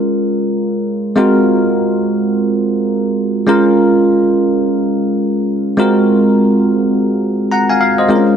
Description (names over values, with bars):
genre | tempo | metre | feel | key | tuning
R&B | free time | none | none | unclear | A4 = 440 Hz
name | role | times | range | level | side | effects
bell-like tine electric piano | solo | 0.0-8.4 s | Ab3 to Bb5 | -11 LUFS | equal | lush chorus
room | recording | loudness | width
moderate lush hall reverb, RT60 2.5 s | dark, warm production | -11 LUFS | side -8 dB against mid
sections
0.0-8.4 A section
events
none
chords
0.0 Bbm7; 1.2 Ab13; 3.5 Bbm7; 5.8 Ab13